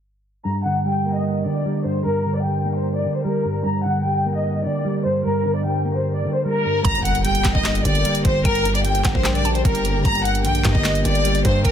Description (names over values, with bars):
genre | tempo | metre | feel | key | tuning
hip hop, trap | 150 BPM | 4/4 | half-time | G minor | A4 = 443 Hz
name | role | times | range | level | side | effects
clean electric guitar | accompaniment | 0.4-11.7 s | G2 to Bb3 | -22 LUFS | right 1 dB | analog chorus
warm symphonic violin section | melody | 0.5-11.7 s | Bb4 to Bb5 | -22 LUFS | left 2 dB | ping-pong delay
hollow square pluck | second line | 6.8-11.7 s | F#5 to Bb5 | -31 LUFS | right 2 dB | chorus, ping-pong delay
dark chamber string section | sustained chords | 6.8-11.7 s | D3 to G4 | -29 LUFS | equal | none
distorted 808-style bass | bass | 6.8-11.7 s | F#1 to G2 | -22 LUFS | equal | distortion
trap drum kit | drums | 6.8-11.7 s | handclaps, hi-hat, kick drum, snare drum | -22 LUFS | equal | none
impact | sound effects | 6.9-8.4 s | none | -30 LUFS | equal | none
room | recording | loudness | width
light reverb | dense, heavily limited modern master, low-pass filter, faint mains hum | -18 LUFS | side -9 dB against mid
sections
0.5-6.8 A section; 6.8-11.7 B section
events
filter sweep 0.5-6.8; impact 6.8-8.4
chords
0.5 Gm